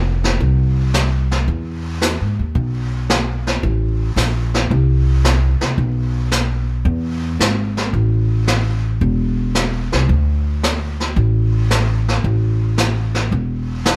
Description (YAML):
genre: jazz piano trio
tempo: 112 BPM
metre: 4/4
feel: swing 69% on 8ths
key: A minor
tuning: A4 = 440 Hz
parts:
  - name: upright bass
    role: bass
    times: 0.0-14.0 s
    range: E1 to G#2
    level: -19 LUFS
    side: equal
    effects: none
  - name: jazz brush drum kit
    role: drums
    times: 0.2-14.0 s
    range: brushed snare drum, hi-hat, kick drum, snare drum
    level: -23 LUFS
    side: equal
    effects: none
room: little or no reverb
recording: none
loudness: -18 LUFS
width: mono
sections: 0.0-7.9 A section; 7.9-14.0 A section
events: none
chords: none